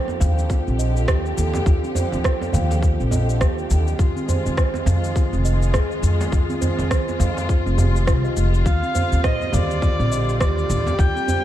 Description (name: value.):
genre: organic downtempo.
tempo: 103 BPM.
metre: 4/4.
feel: swing 59% on 16ths.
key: unclear.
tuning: A4 = 440 Hz.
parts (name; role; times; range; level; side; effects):
dark studio string section; sustained chords; 0.0-11.4 s; D3 to G4; -28 LUFS; equal; sidechain pumping.
steel tongue drum; arpeggios; 0.0-11.4 s; C4 to F5; -27 LUFS; right 2 dB; ping-pong delay.
afro-pop drum kit; drums; 0.1-11.4 s; cabasa, rim click, toms; -29 LUFS; right 1 dB; studio reverb.
djembe; percussion; 0.1-11.4 s; none; -25 LUFS; right 1 dB; none.
upright bass; bass; 0.2-11.1 s; F1 to F2; -20 LUFS; equal; sidechain pumping.
electronic kick drum; drums; 0.5-11.1 s; none; -21 LUFS; equal; studio reverb.
warm kamancheh; melody; 8.7-11.4 s; D5 to G5; -25 LUFS; left 1 dB; ping-pong delay.
room: light reverb, small room ambience.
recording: dark, warm production.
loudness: -18 LUFS.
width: side -12 dB against mid.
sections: 0.0-11.4 A section.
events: none.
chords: 0.0 Ebmaj9; 4.0 Fm7; 8.7 Ebmaj9.